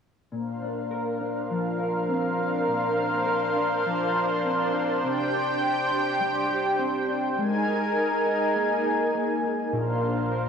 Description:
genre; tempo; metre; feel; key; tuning
dream pop; 102 BPM; 4/4; straight; Bb mixolydian; A4 = 440 Hz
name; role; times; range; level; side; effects
lush unison pad; sustained chords; 0.3-10.5 s; D4 to Ab5; -24 LUFS; right 1 dB; chorus
mellow electric guitar; arpeggios; 0.3-10.5 s; Bb2 to Bb4; -30 LUFS; left 3 dB; analog chorus, analog delay
fat analog bass; bass; 9.7-10.5 s; Bb1; -29 LUFS; right 1 dB; none
room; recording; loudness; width
moderate lush hall reverb, RT60 2.6 s; dry, gritty hardware recording, cassette tape, small room ambience; -23 LUFS; side -6 dB against mid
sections
0.3-10.5 A section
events
none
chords
0.3 Bbadd9; 5.0 Csus2; 7.4 Absus2; 9.7 Bbadd9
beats
| 0.32 0.91 1.50 2.08 | 2.67 3.26 3.85 4.44 | 5.03 5.62 6.20 6.79 | 7.38 7.97 8.56 9.14 | 9.73 10.32

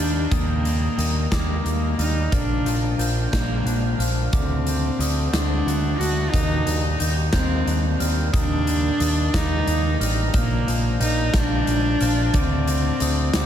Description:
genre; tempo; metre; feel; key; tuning
post-rock; 60 BPM (dotted quarters); 6/8; straight; unclear; A4 = 440 Hz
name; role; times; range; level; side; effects
dark cello; melody; 0.0-13.5 s; Bb3 to F#4; -25 LUFS; left 1 dB; ping-pong delay
glockenspiel with soft plastic mallets; arpeggios; 0.0-13.5 s; D6 to G6; -33 LUFS; right 4 dB; ping-pong delay
twangy electric guitar; arpeggios; 0.0-13.5 s; Bb2 to F#4; -31 LUFS; left 2 dB; wide subtle chorus, ping-pong delay
growling picked electric bass; bass; 0.0-13.5 s; A1 to Eb2; -23 LUFS; equal; overdrive
huge arena drum kit; drums; 0.3-13.5 s; hi-hat, kick drum, snare drum; -25 LUFS; equal; none
room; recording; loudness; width
light reverb; none; -19 LUFS; side -10 dB against mid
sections
0.0-13.5 A section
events
none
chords
0.0 Ebmaj7; 2.3 Bb; 4.3 D7; 6.3 Ebmaj7; 10.3 Bbmaj7; 12.3 D7(no3)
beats
| 0.31 1.32 | 2.33 3.33 | 4.33 5.34 | 6.34 7.34 | 8.34 9.34 | 10.34 11.35 | 12.35 13.35

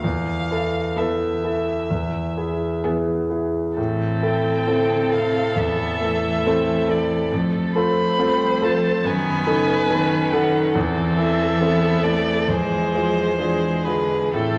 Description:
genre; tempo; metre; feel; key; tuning
classical, slow romantic movement for piano quintet; 60-71 BPM; 4/4; rubato; A minor; A4 = 443 Hz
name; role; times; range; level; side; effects
rich violin; melody; 0.0-14.6 s; A4 to B5; -29 LUFS; equal; none
clear concert grand piano; accompaniment; 0.0-14.6 s; E2 to A4; -23 LUFS; equal; none
clear cello; second line; 1.0-14.6 s; C3 to G3; -29 LUFS; equal; none
rich violin; second line; 1.0-14.6 s; G#4 to C5; -30 LUFS; equal; none
clear viola; accompaniment; 1.0-14.6 s; G#3 to C#4; -32 LUFS; equal; none
room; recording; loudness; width
wet recital hall reverb, RT60 1.3 s; nothing above 10.4 kHz; -21 LUFS; mono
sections
0.0-14.6 A section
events
none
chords
0.0 Esus4; 1.9 E; 3.8 Am; 7.3 F; 9.0 B7/F#; 10.8 Am/E; 12.5 E7b9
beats
| 0.04 0.97 1.92 2.85 | 3.78 4.67 5.57 6.46 | 7.31 8.18 9.05 9.89 | 10.75 11.60 12.48 13.39 | 14.34

